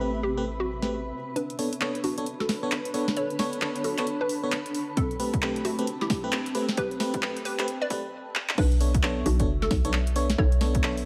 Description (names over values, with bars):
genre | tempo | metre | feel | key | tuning
UK garage, two-step garage | 133 BPM | 4/4 | swing 62% on 16ths | B phrygian | A4 = 440 Hz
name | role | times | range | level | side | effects
warm analog pad | sustained chords | 0.0-11.1 s | E5 to B5 | -46 LUFS | equal | chorus, sidechain pumping
FM electric piano | stabs | 0.0-11.1 s | A3 to C#5 | -34 LUFS | equal | chorus, dub echo
hollow knocking FM bass | bass | 0.0-1.1, 8.6-11.0 s | F#1 to B1 | -29 LUFS | equal | none
granular cloud pad | texture | 0.0-8.1 s | C4 to A5 | -38 LUFS | equal | built-in reverb, sidechain pumping
hollow square pluck | melody | 0.2-10.6 s | A3 to D5 | -35 LUFS | equal | chorus, dub echo
punchy analog drum machine | drums | 0.8-11.0 s | crash cymbal, handclaps, hi-hat, snare drum | -33 LUFS | equal | overdrive
electronic kick drum | drums | 5.0-10.8 s | none | -30 LUFS | equal | none
room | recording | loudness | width
light reverb, digital ambience | vinyl crackle, high-pass filter | -27 LUFS | mono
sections
0.0-1.4 A section; 1.4-8.6 B section; 8.6-11.1 C section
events
build-up 1.4-8.6; drum fill 8.4; drop 8.6-11.1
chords
0.0 Am9; 1.4 Bm9; 4.7 Am9; 8.6 Bm9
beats
0.01 0.46 0.91 | 1.36 1.81 2.27 2.72 | 3.17 3.62 4.07 4.52 | 4.97 5.42 5.87 6.33 | 6.78 7.23 7.68 8.13 | 8.58 9.03 9.48 9.94 | 10.39 10.84